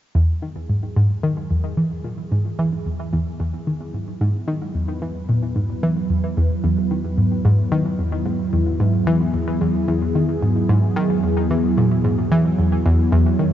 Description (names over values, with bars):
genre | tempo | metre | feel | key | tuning
ambient, sequencer-driven space music | 111 BPM | 4/4 | straight | E major | A4 = 440 Hz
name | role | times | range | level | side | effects
analog pluck | riff | 0.1-13.5 s | E2 to E3 | -19 LUFS | equal | chorus, tape echo
phased analog pad | sustained chords | 0.2-13.5 s | F#3 to C#5 | -23 LUFS | right 2 dB | phaser, chorus
fat analog bass | bass | 0.2-13.5 s | E2 | -34 LUFS | equal | none
room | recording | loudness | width
moderate huge ambient reverb, RT60 7.2 s | cassette tape, nothing above 7.6 kHz | -18 LUFS | side -11 dB against mid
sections
0.2-13.5 A section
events
filter sweep on synth arpeggio sound 0.2-13.5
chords
0.2 Eadd9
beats
| 0.15 0.69 1.24 1.78 | 2.32 2.86 3.40 3.94 | 4.48 5.02 5.56 6.10 | 6.64 7.18 7.72 8.26 | 8.80 9.34 9.88 10.43 | 10.97 11.51 12.05 12.59 | 13.13